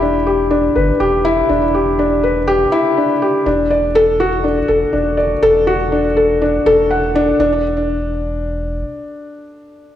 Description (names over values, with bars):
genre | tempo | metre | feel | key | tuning
piano and strings electronica | 122 BPM | 4/4 | straight | unclear | A4 = 440 Hz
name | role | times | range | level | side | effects
felt-muted upright piano | riff | 0.0-10.0 s | D4 to F#5 | -13 LUFS | left 1 dB | digital delay
warm sub bass | bass | 0.0-8.8 s | E1 to G1 | -23 LUFS | equal | none
room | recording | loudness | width
moderate lush hall reverb, RT60 2.3 s | studio reverb | -12 LUFS | side -11 dB against mid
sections
0.0-7.4 A section; 7.4-10.0 B section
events
drop 0.0-7.4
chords
0.0 Em7; 3.5 D/E; 7.4 Dsus2/E